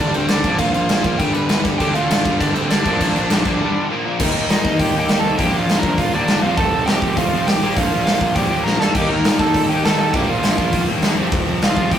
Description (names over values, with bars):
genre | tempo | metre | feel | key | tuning
punk rock | 202 BPM | 4/4 | straight | unclear | A4 = 440 Hz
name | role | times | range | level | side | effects
smooth overdriven lead guitar | melody | 0.0-12.0 s | C4 to B5 | -21 LUFS | right 3 dB | none
distorted electric guitar | riff | 0.0-12.0 s | F2 to Eb4 | -23 LUFS | left 4 dB | distortion
distorted electric guitar | riff | 0.0-12.0 s | F2 to Eb4 | -26 LUFS | right 5 dB | distortion
fuzz picked electric bass | bass | 0.0-12.0 s | F1 to Bb2 | -25 LUFS | equal | overdrive
big rock drum kit | drums | 0.0-12.0 s | crash cymbal, hi-hat, kick drum, snare drum | -19 LUFS | equal | none
distorted electric guitar | riff | 1.8-12.0 s | F2 to Eb4 | -27 LUFS | equal | none
room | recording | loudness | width
moderate studio reverb, RT60 0.6 s | rough rehearsal-room recording, tube saturation | -15 LUFS | side -9 dB against mid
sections
0.0-4.2 A section; 4.2-12.0 B section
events
break 3.6-4.2; drum fill 8.7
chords
0.5 Bb; 1.2 G; 1.8 Dm; 2.3 Gm; 2.9 Bb; 3.6 G; 3.9 Bb; 4.2 Eb; 5.4 Bb; 6.4 F; 7.6 Bb; 9.0 Eb; 10.1 Bb; 11.2 F